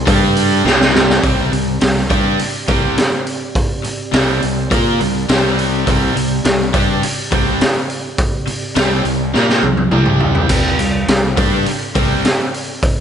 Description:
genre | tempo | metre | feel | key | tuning
hard rock | 104 BPM | 4/4 | straight | unclear | A4 = 440 Hz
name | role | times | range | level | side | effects
mellow tonewheel organ | sustained chords | 0.0-13.0 s | G3 to D5 | -30 LUFS | right 4 dB | none
fuzz fingered electric bass | bass | 0.0-12.2 s | C2 to Bb2 | -20 LUFS | equal | overdrive
cranked stack guitar | riff | 0.1-12.2 s | C3 to Bb4 | -20 LUFS | right 11 dB | overdrive, slapback echo
crunchy overdriven guitar | riff | 0.1-12.2 s | C3 to Bb4 | -21 LUFS | left 10 dB | slapback echo
raw garage drum kit | drums | 0.1-13.0 s | crash cymbal, hi-hat, kick drum, snare drum, toms | -16 LUFS | equal | none
room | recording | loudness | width
light reverb, small room ambience | nothing above 10.8 kHz | -13 LUFS | side -8 dB against mid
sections
0.0-1.2 A section; 1.2-13.0 B section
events
drum fill 0.6-1.2, 9.3-10.5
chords
0.1 G5; 0.6 C5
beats
0.07 0.65 | 1.23 1.81 2.39 2.97 | 3.55 4.13 4.71 5.29 | 5.87 6.45 7.03 7.61 | 8.19 8.76 9.34 9.92 | 10.50 11.08 11.66 12.24 | 12.82

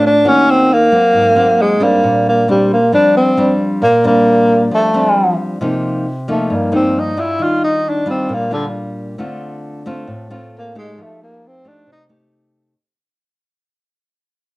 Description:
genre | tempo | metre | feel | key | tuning
bossa nova | 134 BPM | 4/4 | straight | Bb major | A4 = 439 Hz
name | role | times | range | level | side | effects
breathy tenor saxophone | melody | 0.0-12.0 s | D3 to F4 | -12 LUFS | equal | cassette tape
nylon-string guitar | accompaniment | 0.0-12.7 s | G2 to G4 | -18 LUFS | equal | none
room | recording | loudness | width
wet studio reverb, RT60 0.6 s | home recording on cassette | -11 LUFS | side -20 dB against mid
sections
0.0-5.6 A section; 5.6-12.8 B section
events
fade-out 5.6-12.8; tenor saxophone solo 5.6-12.8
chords
0.2 Ebm7; 1.1 Ab9; 2.0 Bb69; 5.6 Cm11; 7.4 Ebmaj9; 9.2 Dm7; 11.0 F9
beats
| 0.24 0.69 1.14 1.58 | 2.03 2.48 2.92 3.37 | 3.82 4.26 4.71 5.16 | 5.60 6.05 6.50 6.94 | 7.39 7.84 8.29 8.73 | 9.18 9.63 10.07 10.52 | 10.97 11.42 11.87 12.31

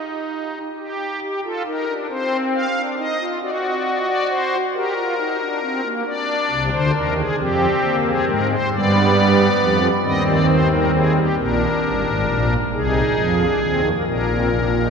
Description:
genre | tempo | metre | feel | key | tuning
classical, baroque-style 3-part fugue for pipe organ | 45 BPM (dotted quarters) | 6/8 | straight | C minor | A4 = 441 Hz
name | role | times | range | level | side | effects
pipe organ, strings celeste | solo | 0.0-14.9 s | G1 to F5 | -17 LUFS | equal | none
room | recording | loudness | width
wet cathedral reverb, RT60 6.2 s | recorded in a church or concert hall | -17 LUFS | side -6 dB against mid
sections
0.0-11.4 A section; 11.4-14.9 B section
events
none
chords
0.0 N.C.; 0.8 Gm; 2.1 Cm; 3.4 D7/F#; 4.7 Gm; 6.1 Cm; 7.4 Fm; 8.7 G7; 10.1 Cm/Eb; 11.4 Gm; 12.7 Ab/C; 14.1 Bb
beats
| 0.77 2.09 | 3.42 4.74 | 6.06 7.39 | 8.72 10.05 | 11.39 12.73 | 14.07

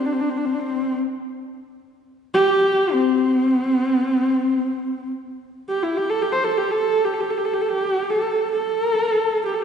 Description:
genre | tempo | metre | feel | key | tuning
mongolian traditional | free time | none | none | unclear | A4 = 441 Hz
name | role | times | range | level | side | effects
warm horsehead fiddle | solo | 0.0-9.6 s | C4 to C5 | -19 LUFS | equal | slapback echo
room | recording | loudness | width
wet concert hall reverb, RT60 2.3 s | heard from further back in the room, nothing above 10.7 kHz | -18 LUFS | side -7 dB against mid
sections
0.0-5.2 A section; 5.2-9.6 A section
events
none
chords
none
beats
free time

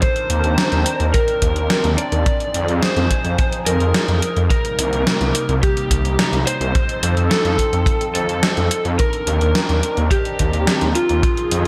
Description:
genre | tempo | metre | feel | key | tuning
synthwave | 107 BPM | 4/4 | straight | C minor | A4 = 440 Hz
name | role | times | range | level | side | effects
lead guitar through a small cranked amp | melody | 0.0-11.7 s | F4 to D5 | -25 LUFS | equal | overdrive, tape echo
soft synth bell | second line | 0.0-11.7 s | F4 to D5 | -31 LUFS | equal | none
phased analog pad | sustained chords | 0.0-11.7 s | C3 to Bb4 | -28 LUFS | equal | phaser, chorus, sidechain pumping
gated 80s digital drum machine | drums | 0.0-11.7 s | hi-hat, snare drum | -24 LUFS | equal | gated reverb, gated reverb snare, overdrive
kick drum | drums | 0.0-11.3 s | none | -23 LUFS | equal | none
detuned saw bass | bass | 0.3-11.6 s | C2 to F2 | -22 LUFS | equal | chorus, sidechain pumping
room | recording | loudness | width
light reverb | none | -18 LUFS | mono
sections
0.0-11.7 A section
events
none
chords
0.0 Cm7/Eb; 2.3 Fm7; 4.5 Cm7; 6.7 F7; 9.0 Cm7/Eb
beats
| 0.02 0.58 1.14 1.70 | 2.26 2.82 3.38 3.94 | 4.51 5.07 5.63 6.19 | 6.75 7.31 7.87 8.43 | 8.99 9.55 10.11 10.67 | 11.23

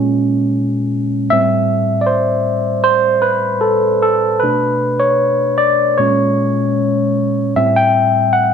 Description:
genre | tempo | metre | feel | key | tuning
R&B | 77 BPM | 4/4 | swing 54% on 16ths | unclear | A4 = 440 Hz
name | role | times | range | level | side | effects
barky tine electric piano | solo | 0.0-8.5 s | A2 to G5 | -12 LUFS | equal | overdrive, phaser, slapback echo
room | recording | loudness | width
moderate echo chamber reverb, RT60 1.6 s, digital ambience | none | -12 LUFS | side -7 dB against mid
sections
0.0-7.5 A section; 7.5-8.5 B section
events
tine electric piano solo 0.0-7.5, 7.5-8.5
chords
0.0 Bbm7; 1.3 Am7; 4.4 Bm7; 6.0 Bbm7; 7.5 Am7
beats
0.52 | 1.30 2.08 2.85 3.63 | 4.41 5.19 5.97 6.75 | 7.53 8.31

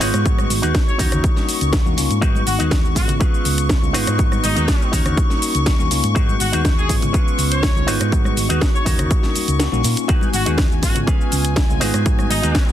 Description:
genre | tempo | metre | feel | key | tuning
filtered disco house | 122 BPM | 4/4 | straight | G# dorian | A4 = 441 Hz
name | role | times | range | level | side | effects
bright horn section | melody | 0.0-12.7 s | D#4 to C#5 | -28 LUFS | left 1 dB | sidechain pumping, tape echo
bell-like tine electric piano | accompaniment | 0.0-12.7 s | G#3 to F#4 | -24 LUFS | right 1 dB | phaser, sidechain pumping
rich chamber string section | sustained chords | 0.0-12.7 s | G#5 to C#6 | -27 LUFS | left 3 dB | sidechain pumping
electric guitar with an envelope filter | riff | 0.0-12.6 s | C#4 to C#5 | -28 LUFS | left 1 dB | sidechain pumping
hollow-body short-scale fingered electric bass | bass | 0.0-12.5 s | G#1 to A#2 | -21 LUFS | equal | sidechain pumping
house drum kit | drums | 0.0-12.7 s | hi-hat, rim click, shaker, snare drum | -24 LUFS | equal | overdrive, sidechain pumping on hats, sidechain pumping on cymbals, sidechain pumping on perc
maracas and congas | percussion | 0.0-12.7 s | none | -31 LUFS | left 4 dB | none
electronic kick drum | drums | 0.3-12.7 s | none | -18 LUFS | equal | overdrive
room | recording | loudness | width
little or no reverb | dense, heavily limited modern master | -15 LUFS | side -11 dB against mid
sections
0.0-12.7 A section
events
kick drops out 9.6-10.1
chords
0.0 G#m7; 1.0 D#m7; 2.2 G#m7; 3.2 C#7; 3.9 G#m7; 4.9 D#m7; 6.2 G#m7; 7.1 C#7; 7.9 G#m7; 8.9 D#m7; 10.1 G#m7; 11.1 C#7; 11.8 G#m7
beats
| 0.26 0.75 1.24 1.73 | 2.22 2.71 3.21 3.70 | 4.19 4.68 5.17 5.67 | 6.16 6.65 7.14 7.63 | 8.12 8.62 9.11 9.60 | 10.09 10.58 11.07 11.57 | 12.06 12.55

